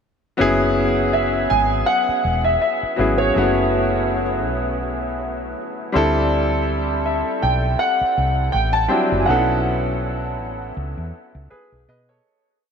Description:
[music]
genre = R&B, neo-soul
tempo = 81 BPM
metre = 4/4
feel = swing 56% on 16ths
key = unclear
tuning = A4 = 439 Hz
[part]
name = clear concert grand piano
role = accompaniment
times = 0.4-12.4 s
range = F#3 to D#5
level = -20 LUFS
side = left 1 dB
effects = none
[part]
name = woody fretless electric bass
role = bass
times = 0.4-12.2 s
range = E1 to B2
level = -24 LUFS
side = equal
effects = none
[part]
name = warm concert grand piano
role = melody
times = 1.1-10.7 s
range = C#5 to A5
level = -21 LUFS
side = right 1 dB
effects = analog chorus
[sound]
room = wet huge ambient reverb, RT60 7.4 s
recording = dreamy mix soaked in reverb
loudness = -17 LUFS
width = side -6 dB against mid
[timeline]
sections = 0.4-12.2 verse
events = fade-out 9.3-12.2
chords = 0.4 F#9sus4; 5.9 D9sus4; 9.3 B9sus4

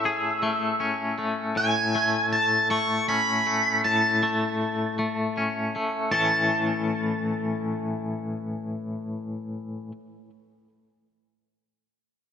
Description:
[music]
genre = rock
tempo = 53 BPM (dotted quarters)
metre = 6/8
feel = straight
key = A major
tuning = A4 = 440 Hz
[part]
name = octave-fuzz lead guitar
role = melody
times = 0.0-9.2 s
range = E5 to C#6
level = -24 LUFS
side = right 1 dB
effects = distortion, digital delay
[part]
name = twangy electric guitar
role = arpeggios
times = 0.0-9.9 s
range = A2 to G#4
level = -26 LUFS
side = left 2 dB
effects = tremolo, digital delay
[sound]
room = moderate lush hall reverb, RT60 2.2 s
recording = none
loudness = -23 LUFS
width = side -8 dB against mid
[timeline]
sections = 0.0-6.1 A section; 6.1-8.4 B section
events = none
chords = 0.0 Amaj7; 1.6 A

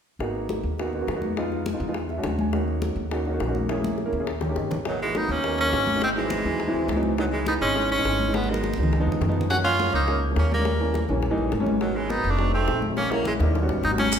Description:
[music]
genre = Afro-Cuban jazz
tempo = 207 BPM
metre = 4/4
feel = straight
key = G# minor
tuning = A4 = 440 Hz
[part]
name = dark baby grand piano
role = accompaniment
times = 0.2-14.1 s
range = E3 to G#5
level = -28 LUFS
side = right 1 dB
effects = none
[part]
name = upright bass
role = bass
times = 0.2-14.2 s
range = E#1 to F#2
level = -28 LUFS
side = equal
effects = none
[part]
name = bongos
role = percussion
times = 0.2-14.2 s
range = none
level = -34 LUFS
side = left 5 dB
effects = none
[part]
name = congas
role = percussion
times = 0.2-14.2 s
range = none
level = -31 LUFS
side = left 2 dB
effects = none
[part]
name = bright tenor saxophone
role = melody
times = 4.9-14.2 s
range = F#3 to F#4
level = -25 LUFS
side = equal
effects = none
[part]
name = warm tenor saxophone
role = second line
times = 4.9-13.9 s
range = D#3 to C#4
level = -32 LUFS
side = right 4 dB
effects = none
[part]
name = maracas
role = percussion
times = 14.1-14.2 s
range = none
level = -24 LUFS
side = right 9 dB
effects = none
[sound]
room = wet recital hall reverb, RT60 1.4 s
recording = recorded in a church or concert hall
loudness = -22 LUFS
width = side -8 dB against mid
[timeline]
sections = 0.2-4.9 A section; 4.9-14.1 B section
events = grand piano fill 1.9-2.5, 4.3-4.9; drum fill 3.7-4.9, 8.3-9.5, 13.0-14.1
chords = 0.2 G#m7; 1.4 Fm7b5; 1.9 E13; 2.5 D#m7; 3.7 A#m7b5; 4.3 D#7; 4.9 G#m9; 6.0 G#7b13; 7.2 C#m9; 8.3 G#m9; 8.9 C#9; 9.5 F#maj9; 10.7 D#7b9; 11.8 G#m9; 12.4 F7b9; 13.0 A#m7b5; 13.5 D#7alt

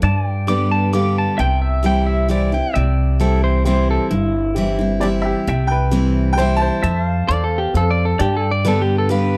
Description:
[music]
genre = honky-tonk and classic country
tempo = 132 BPM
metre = 3/4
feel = straight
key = C major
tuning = A4 = 439 Hz
[part]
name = picked steel-string acoustic guitar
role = accompaniment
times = 0.0-9.4 s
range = E2 to G4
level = -23 LUFS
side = equal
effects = none
[part]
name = pedal steel guitar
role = sustained chords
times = 0.0-9.4 s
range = D5 to A5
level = -31 LUFS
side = equal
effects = none
[part]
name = upright bass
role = bass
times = 0.0-9.4 s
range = G1 to G2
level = -21 LUFS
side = equal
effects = none
[part]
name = pedal steel guitar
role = second line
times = 0.5-4.5, 7.3-9.4 s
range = E4 to D6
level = -24 LUFS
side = equal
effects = none
[part]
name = dark concert grand piano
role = accompaniment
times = 0.5-9.4 s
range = C4 to F5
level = -29 LUFS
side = equal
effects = none
[part]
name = bright upright piano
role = melody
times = 5.0-7.5 s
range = G4 to A5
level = -24 LUFS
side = equal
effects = none
[sound]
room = small room ambience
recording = dry, close 1970s-style studio recording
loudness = -18 LUFS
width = mono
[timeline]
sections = 0.0-2.8 A section; 2.8-5.5 B section; 5.5-9.4 C section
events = pedal steel guitar solo 0.0-2.8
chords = 0.0 G; 1.4 C; 6.8 F; 8.2 G

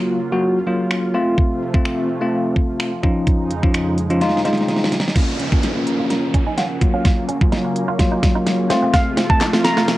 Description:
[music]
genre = dance-pop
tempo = 127 BPM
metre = 4/4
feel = straight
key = Bb minor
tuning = A4 = 440 Hz
[part]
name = bell-like tine electric piano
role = accompaniment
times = 0.0-10.0 s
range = F3 to Gb4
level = -20 LUFS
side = left 1 dB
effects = fast stereo tremolo, sidechain pumping, low-pass filter, cassette tape
[part]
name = lush unison pad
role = sustained chords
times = 0.0-10.0 s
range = F2 to F4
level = -26 LUFS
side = right 2 dB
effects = chorus, phaser, sidechain pumping, low-pass filter, cassette tape
[part]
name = pop drum kit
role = drums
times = 0.9-10.0 s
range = crash cymbal, finger snaps, hi-hat, kick drum, snare drum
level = -18 LUFS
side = equal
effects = cassette tape
[part]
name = hollow square pluck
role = melody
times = 5.2-10.0 s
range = F5 to Bb5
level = -24 LUFS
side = equal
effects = chorus, low-pass filter, cassette tape
[part]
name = clean electric guitar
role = riff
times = 5.2-9.9 s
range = C4 to F4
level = -26 LUFS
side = right 5 dB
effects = lush chorus, low-pass filter, cassette tape
[part]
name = riser and downlifter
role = sound effects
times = 5.2-10.0 s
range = none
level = -30 LUFS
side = right 1 dB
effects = none
[part]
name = group handclap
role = percussion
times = 9.4-9.5 s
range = none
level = -26 LUFS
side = left 5 dB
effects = none
[sound]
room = light reverb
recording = home recording on cassette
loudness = -16 LUFS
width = side -16 dB against mid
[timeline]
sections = 0.0-5.2 A section; 5.2-10.0 B section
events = drum fill 4.2-5.2, 5.2-10.0; build-up 5.2-10.0; riser 5.2-10.0; filter sweep 5.2-10.0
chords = 0.0 Gbmaj7; 1.1 F; 3.0 Dbadd9/F; 4.2 Fm7; 5.2 Bbm; 6.8 Gbmaj7; 8.7 F

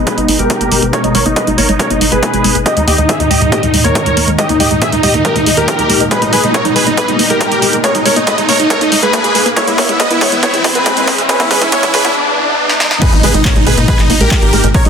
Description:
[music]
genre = uplifting trance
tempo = 139 BPM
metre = 4/4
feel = straight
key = G# harmonic minor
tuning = A4 = 439 Hz
[part]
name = big supersaw lead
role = melody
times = 0.0-14.9 s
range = D#4 to E5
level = -14 LUFS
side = right 1 dB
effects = phaser, sidechain pumping, low-pass filter, dub echo
[part]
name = warm grand piano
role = second line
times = 0.0-14.9 s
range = D#4 to E5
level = -19 LUFS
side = left 1 dB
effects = sidechain pumping, low-pass filter, ping-pong delay
[part]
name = analog string pad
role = sustained chords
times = 0.0-14.9 s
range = G#2 to E4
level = -19 LUFS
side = left 1 dB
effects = ensemble chorus, sidechain pumping
[part]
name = tight sequencer bass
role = bass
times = 0.0-14.9 s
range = E1 to E2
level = -18 LUFS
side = equal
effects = sidechain pumping
[part]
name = riser and impact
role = sound effects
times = 3.7-14.7 s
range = none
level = -19 LUFS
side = equal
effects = none
[part]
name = tight sequenced synth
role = arpeggios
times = 0.1-14.9 s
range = G#3 to D#5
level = -21 LUFS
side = right 2 dB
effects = chorus, sidechain pumping, ping-pong delay
[part]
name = electronic kick drum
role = drums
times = 0.1-14.8 s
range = none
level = -17 LUFS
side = equal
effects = overdrive, high-pass filter on kick, high-pass filter on room
[part]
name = punchy analog drum machine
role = drums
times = 0.1-14.9 s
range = crash cymbal, handclaps, hi-hat, snare drum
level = -16 LUFS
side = right 1 dB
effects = high-pass filter on snare, sidechain pumping on hats, high-pass filter on hats, sidechain pumping on cymbals, high-pass filter on cymbals
[sound]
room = moderate lush hall reverb, RT60 2.3 s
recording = dense, heavily limited modern master, high-pass filter, faint mains hum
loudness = -9 LUFS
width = side -6 dB against mid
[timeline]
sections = 0.0-13.0 A section; 13.0-14.9 B section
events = build-up 0.0-13.0; filter sweep on supersaw synth 0.0-13.0; filter sweep on synth arpeggio sound 0.0-13.0; filter sweep 0.0-13.0; riser 3.7-13.0; drum fill 6.1-12.2, 12.7-13.0; drop 13.0-14.9; impact 13.0-14.7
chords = 0.0 G#madd9; 2.7 D#sus4; 6.1 G#madd9; 9.6 E; 13.0 G#madd9

